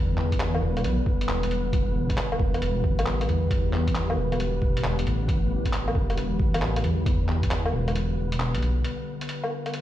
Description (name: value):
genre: future garage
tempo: 135 BPM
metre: 4/4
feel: swing 66% on 16ths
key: E minor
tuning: A4 = 436 Hz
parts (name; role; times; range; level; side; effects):
- warbly tape-like pad; sustained chords; 0.0-9.8 s; D3 to B4; -32 LUFS; left 3 dB; chorus, built-in reverb, vintage 12-bit sampler grit, sidechain pumping
- dark detuned saw bass; bass; 0.0-8.8 s; E1 to E2; -26 LUFS; equal; sidechain pumping
- wind-like tuned noise texture; texture; 0.0-9.8 s; B3 to B4; -34 LUFS; right 2 dB; built-in reverb
- lo-fi sampler-style drum kit; drums; 0.2-9.8 s; handclaps, hi-hat, woodblock; -31 LUFS; equal; vintage 12-bit sampler grit
- electronic kick drum; drums; 0.3-7.5 s; none; -26 LUFS; equal; vintage 12-bit sampler grit
room: little or no reverb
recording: played on a big sound system in a bare room, stone room reverb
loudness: -23 LUFS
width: side -13 dB against mid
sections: 0.0-8.8 A section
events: kick drops out 8.0-8.8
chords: 0.0 Em7